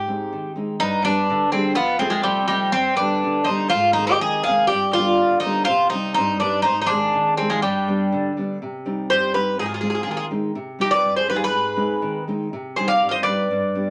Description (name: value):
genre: greek folk, Greek bouzouki band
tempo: 123 BPM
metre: 2/4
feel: straight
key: unclear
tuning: A4 = 440 Hz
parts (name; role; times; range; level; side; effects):
- Greek bouzouki; melody; 0.0-13.9 s; G3 to F5; -22 LUFS; equal; none
- nylon-string guitar; accompaniment; 0.0-13.9 s; F2 to Eb4; -28 LUFS; equal; none
- mandolin; second line; 0.8-13.9 s; C4 to F5; -29 LUFS; equal; none
room: wet small room ambience, RT60 0.5 s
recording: none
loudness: -21 LUFS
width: mono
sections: 0.8-8.6 A section; 8.6-13.9 B section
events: none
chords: 0.0 Ab; 0.8 G; 1.8 F; 2.7 G; 3.7 Ab; 4.7 G; 5.7 Cm; 6.7 Ab; 7.6 G; 8.6 Cm; 9.6 Ab; 10.6 Cm; 11.5 Ab; 12.5 Cm